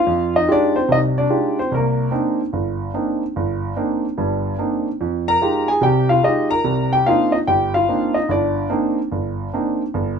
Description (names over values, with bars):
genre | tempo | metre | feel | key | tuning
solo jazz | 146 BPM | 4/4 | swing 64% on 8ths | C minor | A4 = 435 Hz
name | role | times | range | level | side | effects
warm concert grand piano | solo | 0.0-10.2 s | G1 to Bb5 | -17 LUFS | equal | none
room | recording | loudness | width
light reverb | minimal, uncompressed stereo recording | -17 LUFS | side -6 dB against mid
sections
0.0-10.2 A section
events
none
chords
0.1 Fm9; 1.7 Cm9; 5.0 Fm9; 6.6 Cm9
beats
| 0.07 0.48 0.89 1.30 | 1.71 2.12 2.54 2.94 | 3.36 3.77 4.18 4.59 | 5.00 5.41 5.82 6.23 | 6.64 7.06 7.47 7.88 | 8.29 8.70 9.11 9.53 | 9.94